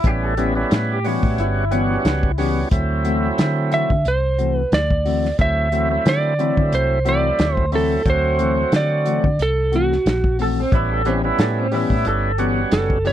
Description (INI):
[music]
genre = straight-eighth soul blues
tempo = 90 BPM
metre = 4/4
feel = swing 55% on 16ths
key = unclear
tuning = A4 = 444 Hz
[part]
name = electric guitar through a small old amp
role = second line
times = 0.0-2.7, 10.4-12.6 s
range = C4 to A4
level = -25 LUFS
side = right 1 dB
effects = tremolo
[part]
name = tonewheel organ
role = accompaniment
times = 0.0-13.1 s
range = F#3 to F#4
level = -23 LUFS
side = right 3 dB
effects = overdrive, slow rotary speaker
[part]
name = vintage muted fingered electric bass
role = bass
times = 0.0-13.1 s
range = F#1 to D3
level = -22 LUFS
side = equal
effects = none
[part]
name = warm soul drum kit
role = drums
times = 0.0-13.1 s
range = hi-hat, kick drum, snare drum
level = -21 LUFS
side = equal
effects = none
[part]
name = mellow electric guitar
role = stabs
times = 0.4-13.1 s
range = E3 to G4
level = -25 LUFS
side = left 11 dB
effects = spring reverb
[part]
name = electric slide guitar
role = melody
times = 3.7-13.1 s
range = F#4 to E5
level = -20 LUFS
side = right 3 dB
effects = none
[sound]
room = little or no reverb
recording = dry, close 1970s-style studio recording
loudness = -16 LUFS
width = side -11 dB against mid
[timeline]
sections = 0.0-13.1 A section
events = none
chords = 0.0 A9; 2.7 D9; 10.7 A9